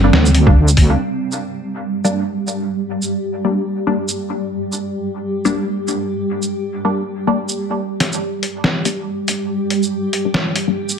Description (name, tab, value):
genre	deep dubstep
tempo	141 BPM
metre	4/4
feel	swing 57% on 16ths, half-time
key	G minor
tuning	A4 = 440 Hz
part	granular cloud pad	sustained chords	0.0-11.0 s	G3 to G4	-21 LUFS	right 1 dB	built-in reverb
part	filtered dub chord stab	stabs	0.0-10.8 s	G3 to D4	-21 LUFS	left 2 dB	phaser, dub echo
part	deep soft wobble bass	bass	0.0-1.0 s	G1 to D2	-12 LUFS	equal	chorus, tube saturation
part	trip hop sampler-style drum kit	drums	0.1-11.0 s	hi-hat, shaker, snare drum	-19 LUFS	equal	small room reverb
part	electronic kick drum	drums	0.5-0.9 s	none	-12 LUFS	equal	small room reverb
room	wet echo chamber reverb, RT60 1.2 s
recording	none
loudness	-16 LUFS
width	side -7 dB against mid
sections	1.0-7.8 A section; 7.8-11.0 B section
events	filter sweep on ambient pad 1.0-7.8; build-up 7.8-11.0; filter sweep on synth stab 7.8-11.0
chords	0.0 Gm